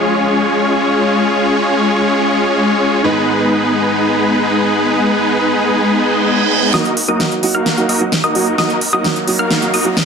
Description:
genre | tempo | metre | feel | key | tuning
EDM, festival progressive house | 130 BPM | 4/4 | straight | Eb minor | A4 = 440 Hz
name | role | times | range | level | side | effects
dark baby grand piano | accompaniment | 0.0-9.9 s | Ab2 to Gb4 | -22 LUFS | right 2 dB | tape echo
supersaw chords | riff | 0.0-9.9 s | Ab3 to F5 | -13 LUFS | left 1 dB | cassette tape, low-pass filter, tape echo
reverse cymbal and riser | sound effects | 6.0-10.1 s | none | -22 LUFS | right 5 dB | none
wide unison pluck | arpeggios | 6.7-9.9 s | Eb6 to F6 | -21 LUFS | equal | tape echo
big-room dance drum kit | drums | 6.7-10.1 s | hi-hat, snare drum | -17 LUFS | right 1 dB | none
room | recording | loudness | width
moderate digital room reverb, RT60 1.1 s | dense, heavily limited modern master | -12 LUFS | side -6 dB against mid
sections
0.0-6.7 A section; 6.7-10.1 B section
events
reverse cymbal 6.0-6.7; build-up 6.7-10.1; drum fill 6.7-10.1; filter sweep on supersaw synth 6.7-10.1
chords
0.0 Db; 3.0 Abm; 6.7 Ebm

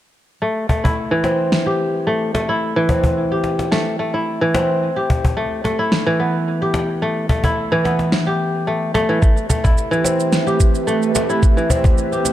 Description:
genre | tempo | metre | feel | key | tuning
organic downtempo | 109 BPM | 4/4 | swing 53% on 16ths | A minor | A4 = 440 Hz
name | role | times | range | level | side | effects
kora | arpeggios | 0.4-12.3 s | E3 to G4 | -18 LUFS | equal | low-pass filter, tape echo
cajon | percussion | 0.7-12.3 s | none | -21 LUFS | left 1 dB | none
electronic snare drum and shaker | drums | 1.5-12.3 s | none | -21 LUFS | equal | none
airy breathy pad | sustained chords | 9.6-12.3 s | A3 to E5 | -22 LUFS | right 4 dB | chorus, sidechain pumping
electronic kick drum | drums | 9.2-12.0 s | none | -14 LUFS | equal | none
room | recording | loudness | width
light reverb | dark, warm production | -16 LUFS | side -12 dB against mid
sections
0.4-12.3 A section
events
none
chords
0.4 Am7; 4.8 Em

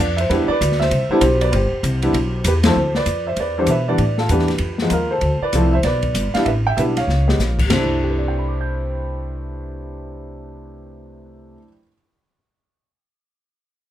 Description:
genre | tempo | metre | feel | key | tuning
jazz piano trio | 194 BPM | 4/4 | swing 62% on 8ths | C major | A4 = 440 Hz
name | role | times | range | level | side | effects
warm upright piano | melody | 0.0-11.9 s | D2 to G6 | -20 LUFS | right 1 dB | none
upright bass | bass | 0.0-11.6 s | G1 to B2 | -21 LUFS | equal | none
open jazz drum kit | drums | 0.2-7.8 s | crash cymbal, hi-hat, kick drum, ride cymbal, snare drum, toms | -24 LUFS | left 2 dB | none
room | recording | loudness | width
moderate studio reverb, RT60 0.5 s | dark, warm production | -16 LUFS | side -12 dB against mid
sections
0.0-2.8 A section; 2.8-7.7 B section; 7.7-10.2 C section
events
band accent 2.6; drum fill 7.1-7.4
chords
0.3 Cmaj7; 2.8 Dm7; 3.4 Em7; 4.0 A9sus4; 4.6 Ebadd9; 5.2 Dm9; 5.8 Em7 (rootless); 6.5 A9sus4; 7.1 Db; 7.7 C69

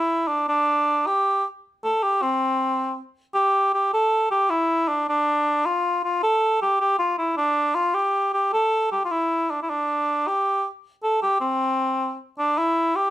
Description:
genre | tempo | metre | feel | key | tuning
celtic folk | 104 BPM (dotted quarters) | 6/8 | straight | unclear | A4 = 441 Hz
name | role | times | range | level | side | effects
mellow cor anglais | solo | 0.0-13.1 s | C4 to A4 | -20 LUFS | equal | none
room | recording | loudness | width
light reverb | none | -20 LUFS | side -14 dB against mid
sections
0.0-3.4 A section; 3.4-12.6 A section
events
none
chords
none

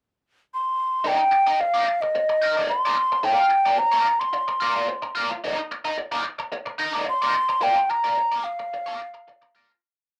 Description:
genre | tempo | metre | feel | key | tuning
funk | 110 BPM | 4/4 | straight | C minor | A4 = 439 Hz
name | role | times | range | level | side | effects
mellow hollow jazz flute | melody | 0.5-9.5 s | Eb5 to C6 | -23 LUFS | equal | none
raw garage guitar | accompaniment | 1.0-9.7 s | Eb4 to Eb5 | -29 LUFS | equal | wah, overdrive
room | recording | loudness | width
light reverb | none | -23 LUFS | mono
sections
0.0-1.1 pickup bar; 1.1-9.8 groove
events
fade-out 7.6-9.8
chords
0.0 N.C.; 1.1 Cm9; 3.2 Gm7; 5.4 Cm9; 7.6 Bb/F

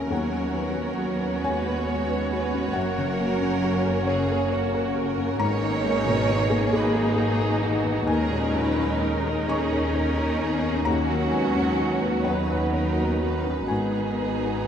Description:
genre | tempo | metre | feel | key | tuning
cinematic | 41-46 BPM (dotted quarters) | 6/8 | rubato | G# minor | A4 = 441 Hz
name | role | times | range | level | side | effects
rich studio violin section | melody | 0.0-14.7 s | F#4 to C#5 | -32 LUFS | right 4 dB | none
warm studio violin section | second line | 0.0-14.7 s | C#4 to C#5 | -31 LUFS | right 2 dB | none
felt-muted upright piano | accompaniment | 0.0-14.7 s | D#2 to C#6 | -28 LUFS | left 3 dB | none
rich studio viola section | accompaniment | 0.0-14.7 s | D#3 to D#4 | -31 LUFS | right 1 dB | none
mellow French horn section | sustained chords | 0.0-14.7 s | B2 to F#4 | -30 LUFS | left 1 dB | none
rich studio cello section | bass | 0.0-14.7 s | C#3 to C#4 | -30 LUFS | equal | none
rich studio double bass section | bass | 0.0-14.7 s | F#1 to D#2 | -29 LUFS | equal | none
room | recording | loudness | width
wet cathedral reverb, RT60 5.8 s | in a vast, echoing space | -22 LUFS | side -8 dB against mid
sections
0.0-14.7 A section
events
none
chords
0.1 Badd9/D#; 2.8 F#; 5.4 G#m; 8.1 D#7sus4; 13.7 G#m7

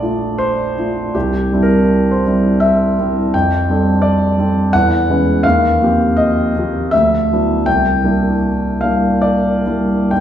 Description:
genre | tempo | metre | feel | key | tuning
classical, impressionist solo piano | 64-86 BPM | 3/4 | rubato | unclear | A4 = 440 Hz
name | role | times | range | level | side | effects
clear concert grand piano | solo | 0.0-10.2 s | Bb1 to G5 | -12 LUFS | equal | none
room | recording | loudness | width
wet recital hall reverb, RT60 1.6 s | heard from further back in the room | -12 LUFS | side -10 dB against mid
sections
0.0-10.2 A section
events
none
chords
0.0 Bbmaj7; 1.1 Cadd9; 3.3 F69; 4.7 E69; 5.4 Eb69; 6.9 D69; 7.7 C9

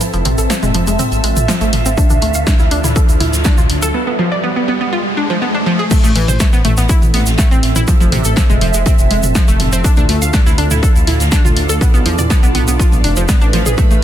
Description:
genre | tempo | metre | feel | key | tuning
melodic techno | 122 BPM | 4/4 | straight | unclear | A4 = 440 Hz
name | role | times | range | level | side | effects
analog pluck | arpeggios | 0.0-14.0 s | C3 to F5 | -18 LUFS | equal | chorus, sidechain pumping, tape echo
big rock drum kit | drums | 0.0-13.9 s | hi-hat, snare drum | -29 LUFS | right 1 dB | none
punchy analog drum machine | drums | 0.0-14.0 s | crash cymbal, hi-hat, snare drum, toms | -20 LUFS | equal | sidechain pumping on toms, sidechain pumping on hats, sidechain pumping on cymbals
egg shaker | percussion | 0.0-14.0 s | none | -24 LUFS | right 2 dB | none
riser | sound effects | 1.3-5.9 s | none | -23 LUFS | left 1 dB | none
ethereal airy pad | texture | 0.0-14.0 s | C4 to E5 | -22 LUFS | right 2 dB | ensemble chorus, built-in reverb, phaser, sidechain pumping
dark detuned saw bass | bass | 0.1-14.0 s | F1 to E2 | -17 LUFS | equal | sidechain pumping
electronic kick drum | drums | 2.0-13.9 s | none | -12 LUFS | equal | overdrive
room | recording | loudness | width
light reverb, small room ambience | dense, heavily limited modern master | -11 LUFS | side -11 dB against mid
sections
0.0-5.9 A section; 5.9-14.0 B section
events
build-up 0.0-5.9; filter sweep on synth arpeggio sound 0.0-5.9; riser 1.3-5.9; break 3.9-5.9; drop 5.9-14.0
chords
0.0 Fmaj7; 2.0 Dmadd9; 3.9 Bdim; 5.9 Amadd9; 7.9 Fmaj7; 9.8 Dmadd9; 11.8 Bdim

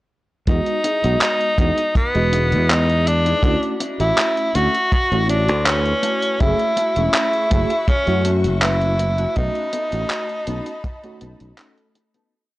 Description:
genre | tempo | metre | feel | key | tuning
vaporwave | 81 BPM | 4/4 | straight | E major | A4 = 440 Hz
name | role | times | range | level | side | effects
edgy tenor saxophone | melody | 0.5-11.6 s | B3 to F#4 | -20 LUFS | equal | tape echo
mellow FM electric piano | accompaniment | 0.5-12.3 s | G#3 to D#5 | -26 LUFS | equal | tremolo, analog chorus
fingered electric bass | bass | 0.5-11.5 s | E1 to F#2 | -20 LUFS | equal | tube saturation
gated 80s digital drum machine | drums | 0.5-12.3 s | handclaps, hi-hat | -22 LUFS | equal | gated reverb
kick drum | drums | 0.5-11.0 s | none | -19 LUFS | equal | none
mellow electric guitar | riff | 0.8-12.3 s | A3 to A4 | -31 LUFS | left 2 dB | analog chorus, low-pass filter
rich studio string section | sustained chords | 6.4-12.3 s | F#4 to C#6 | -33 LUFS | left 2 dB | none
room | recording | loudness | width
light reverb, small room ambience | dry, gritty hardware recording, cassette tape | -16 LUFS | side -18 dB against mid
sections
0.5-12.3 groove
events
fade-out 8.4-12.3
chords
0.5 Emaj7; 3.4 Dmaj9; 6.0 F#m7; 9.4 B7

